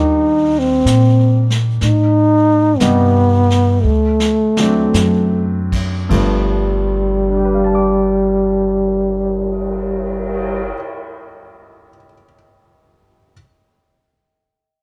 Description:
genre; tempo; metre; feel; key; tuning
jazz ballad; 51-66 BPM; 4/4; swing 68% on 8ths; unclear; A4 = 435 Hz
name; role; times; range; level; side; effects
breathy trombone; melody; 0.0-10.7 s; G3 to Eb4; -17 LUFS; equal; none
warm concert grand piano; accompaniment; 0.0-13.3 s; G2 to D6; -25 LUFS; equal; none
upright bass; bass; 0.0-10.7 s; G1 to Bb2; -20 LUFS; equal; none
vintage brush drum kit; drums; 0.9-10.6 s; brushed snare drum, crash cymbal, cymbal swell, hi-hat, kick drum, snare drum; -28 LUFS; equal; none
room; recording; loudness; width
little or no reverb; none; -15 LUFS; mono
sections
0.0-6.1 A section; 6.1-10.8 B section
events
slowing down 0.0-6.1; drum fill 3.8-4.9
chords
0.0 Cm7; 1.8 Am7b5; 3.8 D7; 6.1 G7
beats
0.86 | 1.81 2.80 3.84 4.94 | 6.10 7.28 8.46 9.64

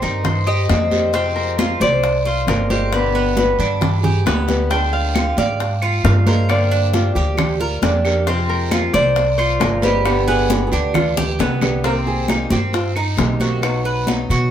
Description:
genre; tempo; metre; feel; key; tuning
latin, Cuban son and guajira; 135 BPM; 4/4; straight; C minor; A4 = 437 Hz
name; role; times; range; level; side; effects
Celtic harp; melody; 0.0-11.9 s; Bb4 to G5; -21 LUFS; equal; none
picked acoustic archtop guitar; accompaniment; 0.0-14.5 s; B2 to G4; -24 LUFS; left 2 dB; none
Cuban tres; arpeggios; 0.0-14.5 s; B3 to D5; -24 LUFS; right 3 dB; none
upright bass; bass; 0.0-14.5 s; G1 to B2; -20 LUFS; equal; none
congas; percussion; 0.0-14.5 s; none; -24 LUFS; right 1 dB; none
guiro; percussion; 0.0-14.5 s; none; -32 LUFS; right 3 dB; none
bongos; percussion; 0.2-14.3 s; none; -25 LUFS; left 5 dB; none
flamenco guitar; second line; 3.8-13.8 s; Eb4 to Bb4; -25 LUFS; right 3 dB; none
claves; percussion; 5.1-13.9 s; none; -29 LUFS; right 2 dB; none
room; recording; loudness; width
wet small room reverb, RT60 0.5 s; band playing live in one room; -15 LUFS; side -10 dB against mid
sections
0.0-11.8 A section; 11.8-14.5 B section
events
drum fill 4.5, 11.2-11.8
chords
0.0 Cm; 1.1 Fm; 2.9 G; 4.7 Ddim; 6.5 Gm; 8.3 Fm; 10.1 G; 11.8 Cm7; 13.6 B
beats
0.25 0.69 | 1.14 1.59 2.03 2.48 | 2.92 3.37 3.81 4.26 | 4.71 5.15 5.60 6.04 | 6.49 6.93 7.38 7.83 | 8.27 8.72 9.16 9.61 | 10.06 10.50 10.95 11.40 | 11.84 12.29 12.74 13.18 | 13.63 14.08

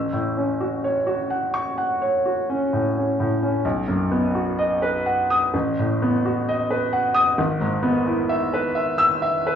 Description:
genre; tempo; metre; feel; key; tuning
classical, romantic character piece for solo piano; 64 BPM; 4/4; rubato; unclear; A4 = 441 Hz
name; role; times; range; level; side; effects
clear grand piano; solo; 0.0-9.6 s; G#1 to E6; -19 LUFS; equal; none
room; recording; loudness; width
moderate large studio reverb, RT60 1.2 s; worn, warbling old tape, cassette tape, warbly pitch drift, studio ambience; -19 LUFS; side -8 dB against mid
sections
0.0-9.6 A section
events
none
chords
0.0 F#m/A; 3.6 B; 5.5 B7/A; 7.4 E/G#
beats
0.85 1.77 2.71 | 3.64 4.58 5.53 6.47 | 7.38 8.30 9.23

